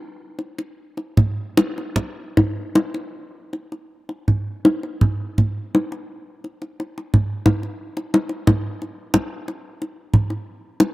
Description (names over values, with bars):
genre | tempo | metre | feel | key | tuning
gamelan | 76-90 BPM | 4/4 | straight | none | none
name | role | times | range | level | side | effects
kendang | percussion | 0.4-10.9 s | none | -18 LUFS | equal | none
room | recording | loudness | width
moderate spring reverb, RT60 2.5 s | none | -19 LUFS | side -18 dB against mid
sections
0.0-7.8 A section; 7.8-10.9 B section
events
none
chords
none